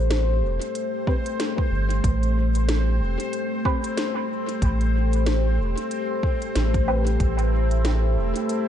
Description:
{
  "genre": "ambient dub",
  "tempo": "93 BPM",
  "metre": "4/4",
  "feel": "swing 58% on 16ths",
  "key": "A minor",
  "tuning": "A4 = 445 Hz",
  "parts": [
    { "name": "deep dark ambient pad", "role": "sustained chords", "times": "0.0-8.7 s", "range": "A3 to C5", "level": "-27 LUFS", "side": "left 3 dB", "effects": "chorus, built-in reverb" },
    { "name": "round analog bass", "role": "bass", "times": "0.0-8.3 s", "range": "E1 to A1", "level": "-21 LUFS", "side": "equal", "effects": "none" },
    { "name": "bubbling stepped-filter texture", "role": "texture", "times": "0.0-8.7 s", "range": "C4 to C5", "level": "-33 LUFS", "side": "equal", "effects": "chorus, built-in reverb" },
    { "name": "organic electronic drum kit", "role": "drums", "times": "0.1-8.6 s", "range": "hi-hat, snare drum", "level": "-32 LUFS", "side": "equal", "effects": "overdrive, dub echo" },
    { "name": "filtered dub chord stab", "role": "stabs", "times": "1.1-7.1 s", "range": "C4 to B4", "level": "-32 LUFS", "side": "right 1 dB", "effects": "phaser, lush chorus, dub echo" },
    { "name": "electronic kick drum", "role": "drums", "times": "1.1-7.3 s", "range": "none", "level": "-24 LUFS", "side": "equal", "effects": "none" }
  ],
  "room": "light reverb, digital ambience",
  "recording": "dark, warm production, nothing above 10.4 kHz",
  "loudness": "-21 LUFS",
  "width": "side -10 dB against mid",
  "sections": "0.0-8.7 A section",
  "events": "none",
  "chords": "0.0 Am7",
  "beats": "0.10 0.75 1.40 | 2.04 2.69 3.33 3.98 | 4.62 5.27 5.91 6.56 | 7.20 7.85 8.49"
}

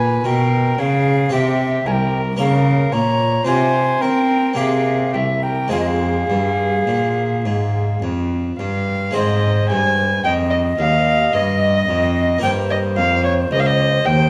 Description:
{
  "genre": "classical, baroque-style sonata movement with continuo",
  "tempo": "54 BPM",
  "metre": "3/4",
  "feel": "uneven beats, rubato",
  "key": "F minor, Ab major from 9.2 s",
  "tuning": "A4 = 440 Hz",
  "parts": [
    { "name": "alto recorder", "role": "melody", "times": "0.0-14.3 s", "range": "C5 to Bb5", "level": "-24 LUFS", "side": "equal", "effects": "none" },
    { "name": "dark violin", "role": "second line", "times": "0.0-14.3 s", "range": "G4 to Ab5", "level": "-23 LUFS", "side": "equal", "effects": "none" },
    { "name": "harpsichord", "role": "accompaniment", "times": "0.0-14.3 s", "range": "C2 to C5", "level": "-26 LUFS", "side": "equal", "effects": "none" },
    { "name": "rich cello", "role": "bass", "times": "0.0-14.3 s", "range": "C2 to C4", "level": "-22 LUFS", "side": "equal", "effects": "none" }
  ],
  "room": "moderate recital hall reverb, RT60 1.3 s",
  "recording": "lossy compression artefacts",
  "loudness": "-18 LUFS",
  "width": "mono",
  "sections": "0.0-9.2 A section; 9.2-14.3 A section",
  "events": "none",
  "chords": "0.0 Db7; 1.3 C; 2.4 Bbm/Db; 3.5 Fm/C; 4.6 C5; 5.7 Fm; 9.2 Ab; 12.4 Eb",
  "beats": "0.25 1.32 | 2.39 3.47 4.57 | 5.72 6.88 8.03 | 9.16 10.24 11.34 | 12.43 13.51"
}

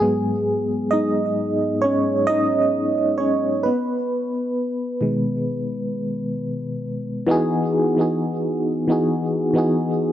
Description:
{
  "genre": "R&B",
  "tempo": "66 BPM",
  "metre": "4/4",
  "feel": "swing 54% on 16ths",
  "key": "unclear",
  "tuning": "A4 = 440 Hz",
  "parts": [
    { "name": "FM electric piano with tremolo", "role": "solo", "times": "0.0-10.1 s", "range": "G#2 to D#5", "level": "-19 LUFS", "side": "equal", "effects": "digital delay" }
  ],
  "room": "light reverb",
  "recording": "dark, warm production",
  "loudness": "-19 LUFS",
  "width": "side -11 dB against mid",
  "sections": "0.0-7.3 A section; 7.3-10.1 B section",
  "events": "FM electric piano solo 0.0-7.3",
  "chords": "0.0 G#m7; 3.6 B6; 7.3 Emaj9",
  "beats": "| 0.01 0.92 1.83 2.74 | 3.65 4.56 5.47 6.38 | 7.28 8.19 9.10 10.01"
}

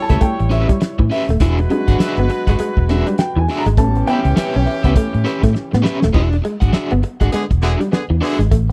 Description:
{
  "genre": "funk",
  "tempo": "101 BPM",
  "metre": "4/4",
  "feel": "swing 60% on 16ths",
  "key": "E mixolydian",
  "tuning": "A4 = 439 Hz",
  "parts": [
    { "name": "warm horn section", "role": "second line", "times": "0.0-8.4 s", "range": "D3 to C#5", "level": "-26 LUFS", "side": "equal", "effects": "none" },
    { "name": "dark upright piano", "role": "stabs", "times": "0.0-5.5 s", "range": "F#3 to A#5", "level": "-25 LUFS", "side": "equal", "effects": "none" },
    { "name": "electric guitar at the edge of break-up", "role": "accompaniment", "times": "0.1-8.4 s", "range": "C#4 to F#5", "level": "-26 LUFS", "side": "equal", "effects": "tremolo" },
    { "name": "electric guitar through a small old amp", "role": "riff", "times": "0.1-8.7 s", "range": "E3 to C#4", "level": "-25 LUFS", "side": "equal", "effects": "none" },
    { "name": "vintage muted fingered electric bass", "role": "bass", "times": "0.1-8.7 s", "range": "D#1 to A2", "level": "-19 LUFS", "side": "equal", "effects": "none" },
    { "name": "warm soul drum kit", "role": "drums", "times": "0.1-8.7 s", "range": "crash cymbal, hi-hat, kick drum, snare drum", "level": "-19 LUFS", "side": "equal", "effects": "none" }
  ],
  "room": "studio reverb",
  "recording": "none",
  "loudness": "-16 LUFS",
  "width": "mono",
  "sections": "0.0-6.1 A section; 6.1-8.7 B section",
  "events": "upright piano solo 0.0-6.1; drum fill 5.6-6.1",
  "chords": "0.0 A9; 1.4 E9; 3.8 A9; 6.1 E9",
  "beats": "0.22 0.81 | 1.41 2.00 2.59 3.18 | 3.77 4.37 4.96 5.55 | 6.14 6.74 7.33 7.92 | 8.51"
}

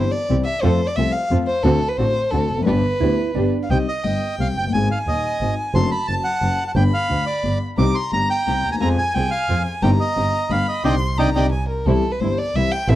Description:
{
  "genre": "tango",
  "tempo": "176 BPM",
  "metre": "3/4",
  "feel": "rubato",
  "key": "C minor from 3.7 s",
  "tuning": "A4 = 440 Hz",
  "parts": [
    { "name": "warm violin", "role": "second line", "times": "0.0-13.0 s", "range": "A4 to C6", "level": "-24 LUFS", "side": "equal", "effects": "none" },
    { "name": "dark concert grand piano", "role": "accompaniment", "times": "0.0-13.0 s", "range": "Eb1 to A4", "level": "-23 LUFS", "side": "left 4 dB", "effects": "none" },
    { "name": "dark symphonic string section", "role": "stabs", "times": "0.0-3.5, 7.8-13.0 s", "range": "G3 to A4", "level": "-30 LUFS", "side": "right 4 dB", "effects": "none" },
    { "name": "clear double bass", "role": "bass", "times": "0.0-13.0 s", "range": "F1 to F2", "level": "-22 LUFS", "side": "right 2 dB", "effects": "none" },
    { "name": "hollow-body jazz guitar", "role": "second line", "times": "3.0-3.7 s", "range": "D4 to E4", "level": "-24 LUFS", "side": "right 13 dB", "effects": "none" },
    { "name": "bandoneon", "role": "melody", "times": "3.7-11.5 s", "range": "D5 to D6", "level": "-23 LUFS", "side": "right 2 dB", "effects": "none" }
  ],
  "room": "studio ambience",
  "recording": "dry, close 1970s-style studio recording",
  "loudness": "-17 LUFS",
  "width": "side -14 dB against mid",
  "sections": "0.0-3.7 A section; 3.7-11.9 B section; 11.9-13.0 A section",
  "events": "violin solo 0.0-3.7, 11.9-13.0; band accent 10.8-11.9",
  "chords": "0.0 C; 0.6 F; 1.6 D7; 2.7 G; 3.7 Cm; 4.7 Ab; 5.7 D7/F#; 6.8 G; 7.8 Cm; 8.8 Fm; 9.8 Cm/G; 10.5 G; 10.8 Cmadd9; 11.9 C",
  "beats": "0.30 | 0.64 0.97 1.31 | 1.65 1.99 2.32 | 2.67 3.01 3.35 | 3.70 4.04 4.38 | 4.72 5.06 5.40 | 5.74 6.08 6.42 | 6.75 7.09 7.44 | 7.78 8.12 8.47 | 8.81 9.15 9.48 | 9.82 10.16 10.50 | 10.84 11.18 11.52 | 11.87 12.21 12.55 | 12.89"
}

